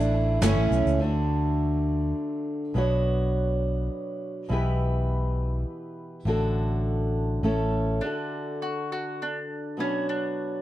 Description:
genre	acoustic folk duo or small band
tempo	102 BPM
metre	3/4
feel	straight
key	D major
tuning	A4 = 441 Hz
part	mandolin	melody	0.0-0.4, 8.0-10.6 s	C#4 to F#4	-33 LUFS	equal	none
part	picked steel-string acoustic guitar	accompaniment	0.0-10.6 s	A2 to C#5	-28 LUFS	equal	none
part	picked twelve-string acoustic guitar	arpeggios	0.0-1.0 s	C#4 to D4	-31 LUFS	right 6 dB	none
part	fingered electric bass	bass	0.0-8.0 s	G1 to D2	-25 LUFS	equal	none
part	tube shaker	percussion	0.0-0.9 s	none	-42 LUFS	left 9 dB	none
part	soft brush drum kit	drums	0.4-0.6 s	ride cymbal, snare drum	-35 LUFS	equal	none
room	light reverb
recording	dark, warm production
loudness	-24 LUFS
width	side -14 dB against mid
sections	0.0-1.0 A section; 1.0-8.0 B section; 8.0-10.6 C section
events	none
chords	0.4 A; 1.0 D; 2.8 Bmadd9; 4.5 Em/B; 6.3 D/A; 7.4 A; 8.0 D; 9.8 Bmadd9

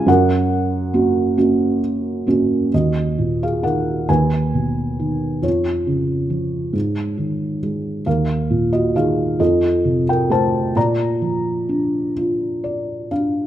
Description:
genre	classical, lyrical solo piano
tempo	44 BPM (dotted quarters)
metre	6/8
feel	rubato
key	Eb minor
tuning	A4 = 439 Hz
part	felt-muted upright piano	solo	0.0-13.5 s	Eb2 to Bb5	-16 LUFS	right 1 dB	none
room	moderate recital hall reverb, RT60 1.5 s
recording	dark, warm production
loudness	-17 LUFS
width	side -12 dB against mid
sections	0.0-2.7 A section; 2.7-13.5 B section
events	felt piano fill 12.2-13.5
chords	0.1 F#; 2.7 Ebm; 4.1 Abm/Eb; 5.4 Db/F; 6.7 Ab5; 8.1 Ebm; 9.4 F7; 10.8 Bb

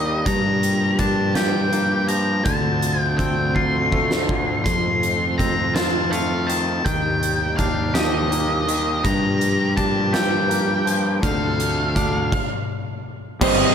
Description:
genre	post-rock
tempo	55 BPM (dotted quarters)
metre	6/8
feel	straight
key	G minor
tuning	A4 = 440 Hz
part	octave-fuzz lead guitar	melody	0.0-13.7 s	Eb5 to C6	-23 LUFS	left 1 dB	distortion, tape echo
part	rich symphonic string section	sustained chords	0.0-12.3 s	D3 to A4	-28 LUFS	right 1 dB	none
part	twangy electric guitar	arpeggios	0.0-13.7 s	F2 to G4	-28 LUFS	left 3 dB	tape echo
part	fuzz fingered electric bass	bass	0.0-13.6 s	G1 to G2	-24 LUFS	equal	overdrive
part	huge arena drum kit	drums	0.3-13.6 s	crash cymbal, hi-hat, kick drum, snare drum	-24 LUFS	equal	none
part	crunchy overdriven guitar	riff	13.4-13.7 s	G3 to Eb5	-16 LUFS	right 2 dB	none
room	light reverb, studio reverb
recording	none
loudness	-18 LUFS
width	side -7 dB against mid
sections	0.0-13.4 A section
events	drum fill 3.6-4.7; stop 12.3-13.4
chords	0.3 Gm7; 2.5 Dm7; 4.7 F7; 6.9 Ebmaj7; 9.0 Gm7; 11.2 Dm7

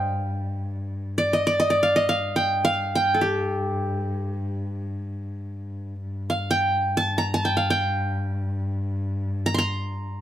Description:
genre	turkish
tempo	free time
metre	none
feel	none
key	G makam ussak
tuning	A4 = 441 Hz
part	qanun	melody	0.0-10.2 s	G4 to C6	-22 LUFS	right 1 dB	none
part	dark cello	drone	0.0-10.2 s	G2	-28 LUFS	left 1 dB	none
room	light reverb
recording	none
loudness	-22 LUFS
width	side -11 dB against mid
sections	0.0-6.0 A section; 6.0-10.2 A section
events	none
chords	none

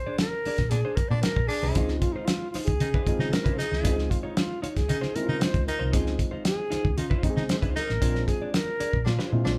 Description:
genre	funk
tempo	115 BPM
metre	4/4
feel	straight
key	unclear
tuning	A4 = 440 Hz
part	hollow concert flute	melody	0.0-9.6 s	Eb4 to D5	-34 LUFS	equal	none
part	clean electric guitar	accompaniment	0.1-9.5 s	D4 to D5	-39 LUFS	equal	warbly pitch drift
part	hollow-body short-scale fingered electric bass	bass	0.1-9.6 s	A1 to Db3	-31 LUFS	equal	none
part	cloth-damped thuddy drum kit	drums	0.2-9.6 s	hi-hat, kick drum, snare drum	-30 LUFS	equal	none
part	growling baritone saxophone	second line	0.7-9.5 s	D4 to Eb4	-36 LUFS	equal	none
part	dark upright piano	stabs	1.8-9.6 s	Ab3 to Ab4	-36 LUFS	equal	none
room	light reverb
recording	band playing live in one room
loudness	-26 LUFS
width	mono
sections	0.0-9.6 A section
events	drum fill 9.1-9.6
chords	0.0 Bb9; 1.8 Dbmaj9; 8.0 Bb9

